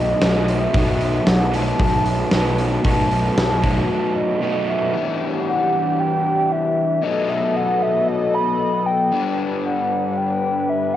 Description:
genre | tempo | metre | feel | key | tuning
rock, shoegaze and dream pop | 115 BPM | 4/4 | straight | unclear | A4 = 435 Hz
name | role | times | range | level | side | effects
hollow clarinet-like synth lead | melody | 0.0-11.0 s | D#5 to B5 | -22 LUFS | equal | chorus, phaser, cassette tape, tape echo
brassy analog pad | sustained chords | 0.0-11.0 s | E3 to D#6 | -26 LUFS | equal | chorus, cassette tape
overdriven semi-hollow guitar | riff | 0.0-11.0 s | G2 to E4 | -24 LUFS | left 7 dB | wide subtle chorus, cassette tape
overdriven semi-hollow guitar | riff | 0.0-4.9 s | B2 to F#4 | -24 LUFS | right 6 dB | reverse reverb, cassette tape
fuzz fingered electric bass | bass | 0.0-3.8 s | B1 | -22 LUFS | equal | overdrive
huge arena drum kit | drums | 0.2-3.8 s | hi-hat, kick drum, snare drum | -21 LUFS | equal | cassette tape
room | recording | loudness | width
light reverb, studio ambience | home recording on cassette | -17 LUFS | side -12 dB against mid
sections
0.0-4.9 A section; 4.9-11.0 B section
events
break 3.9-4.9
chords
0.0 B7; 4.9 Em7; 7.0 B7; 9.1 G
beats
0.22 | 0.74 1.27 1.80 2.32 | 2.85 3.37 3.90 4.42 | 4.95 5.47 5.99 6.51 | 7.03 7.55 8.07 8.60 | 9.12 9.64 10.16 10.68

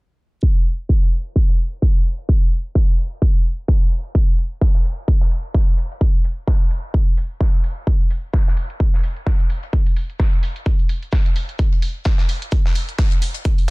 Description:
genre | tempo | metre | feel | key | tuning
house | 129 BPM | 4/4 | swing 57% on 16ths | none | none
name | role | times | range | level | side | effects
electronic kick drum | drums | 0.4-13.6 s | none | -16 LUFS | equal | small room ambience
tight metal drum kit | drums | 0.4-13.7 s | hi-hat, shaker, snare drum | -36 LUFS | left 1 dB | sidechain pumping on hats, high-pass filter on hats, small room ambience, high-pass filter on snare, sidechain pumping on perc, high-pass filter on perc, high-pass filter on room
electronic hi-hat | drums | 0.7-13.7 s | none | -35 LUFS | right 1 dB | low-pass filter on hats, small room ambience
room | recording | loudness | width
small room ambience | dense, heavily limited modern master, low-pass filter | -16 LUFS | side -27 dB against mid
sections
0.4-13.7 A section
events
filter sweep on drum 0.4-13.7; filter sweep 0.4-13.7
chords
none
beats
| 0.43 0.89 1.36 1.82 | 2.29 2.75 3.22 3.68 | 4.15 4.61 5.08 5.54 | 6.01 6.47 6.94 7.41 | 7.87 8.34 8.80 9.27 | 9.73 10.20 10.66 11.13 | 11.59 12.06 12.52 12.99 | 13.45

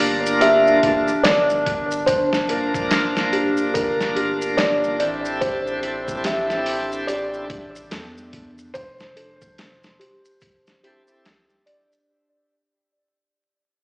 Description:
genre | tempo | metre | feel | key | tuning
trip hop | 72 BPM | 4/4 | swing 60% on 16ths | unclear | A4 = 441 Hz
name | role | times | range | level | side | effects
felt-muted upright piano | melody | 0.0-11.2 s | Bb4 to E5 | -21 LUFS | equal | tape echo
overdriven tonewheel organ | accompaniment | 0.0-11.3 s | Bb3 to Bb4 | -24 LUFS | equal | slow rotary speaker, tremolo, tape echo
warbly tape-like pad | sustained chords | 0.0-12.1 s | D4 | -26 LUFS | equal | chorus, built-in reverb, phaser
soft dub sub bass | bass | 0.0-11.5 s | D1 to E2 | -38 LUFS | equal | tube saturation
boom bap sampler-style drum kit | drums | 0.0-11.9 s | hi-hat, kick drum, snare drum | -24 LUFS | equal | none
maracas | percussion | 0.3-12.1 s | none | -37 LUFS | equal | none
music box | arpeggios | 0.4-12.1 s | G4 to D5 | -28 LUFS | equal | tape echo
room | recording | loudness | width
light reverb, small room ambience | played on a big sound system in a bare room, large studio reverb, vinyl crackle, small speaker sound | -17 LUFS | side -33 dB against mid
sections
0.0-12.1 A section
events
fade-out 0.0-12.1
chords
0.0 Gm7; 5.4 Am7; 8.8 Fmaj7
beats
0.42 1.25 | 2.08 2.92 3.75 4.58 | 5.42 6.25 7.08 7.92 | 8.75 9.59 10.42 11.25

